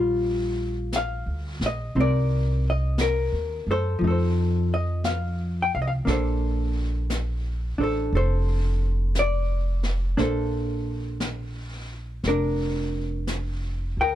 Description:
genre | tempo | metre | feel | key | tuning
jazz ballad | 58 BPM | 4/4 | swing 68% on 8ths | Bb major | A4 = 440 Hz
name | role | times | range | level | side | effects
hollow-body jazz guitar | accompaniment | 0.0-14.2 s | F3 to G5 | -26 LUFS | left 1 dB | none
upright bass | bass | 0.0-14.2 s | F1 to Gb2 | -25 LUFS | equal | none
jazz brush drum kit | drums | 0.9-14.2 s | brushed snare drum, hi-hat, snare drum | -35 LUFS | left 1 dB | none
room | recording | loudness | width
small room ambience | none | -23 LUFS | side -12 dB against mid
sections
0.0-14.2 A section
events
none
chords
0.0 Ebmaj9; 1.9 Cm7; 4.0 F7; 6.0 Bbmaj9

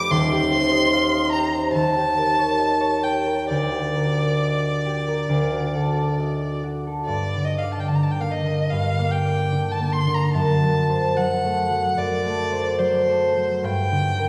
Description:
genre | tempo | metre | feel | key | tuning
classical, romantic duo for violin and harp | 65-76 BPM | 4/4 | rubato | G minor | A4 = 440 Hz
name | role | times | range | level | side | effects
rich violin | melody | 0.0-14.3 s | C5 to D6 | -26 LUFS | equal | none
concert harp | accompaniment | 0.0-14.3 s | Eb1 to F5 | -24 LUFS | equal | none
room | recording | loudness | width
wet scoring stage reverb, RT60 1.5 s | heard from further back in the room | -22 LUFS | mono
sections
0.0-7.1 A section; 7.1-14.3 B section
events
none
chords
0.1 Cm/Eb; 1.8 Eb7; 3.5 Gm/D; 5.3 D; 7.1 Gm; 10.3 D7/F#; 13.6 Gm

